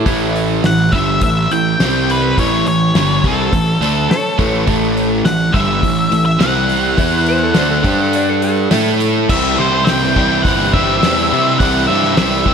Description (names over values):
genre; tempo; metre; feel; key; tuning
classic rock; 104 BPM; 4/4; straight; unclear; A4 = 440 Hz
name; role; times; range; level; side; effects
clean lap steel guitar; second line; 0.0-0.5, 4.1-9.1 s; E4 to D5; -23 LUFS; left 2 dB; slapback echo
overdriven electric guitar; riff; 0.0-12.5 s; G2 to A4; -18 LUFS; right 10 dB; spring reverb, slapback echo
overdriven semi-hollow guitar; riff; 0.0-12.5 s; G2 to A4; -19 LUFS; left 10 dB; none
fuzz picked electric bass; bass; 0.1-12.5 s; G1 to C3; -21 LUFS; equal; overdrive
damped 70s drum kit; drums; 0.1-12.5 s; crash cymbal, hi-hat, kick drum, snare drum; -19 LUFS; equal; none
octave-fuzz lead guitar; melody; 0.7-12.5 s; A4 to G5; -18 LUFS; left 2 dB; distortion, slapback echo
bright tonewheel organ; sustained chords; 9.3-12.5 s; C4 to C5; -28 LUFS; equal; none
room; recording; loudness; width
moderate lush hall reverb, RT60 2.6 s; big arena sound; -12 LUFS; side -6 dB against mid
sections
0.0-9.3 A section; 9.3-12.5 B section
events
none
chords
0.0 A5; 1.8 C5; 2.4 A; 6.4 C5; 7.0 E5; 7.6 D7; 7.9 G5; 8.7 A5; 9.3 C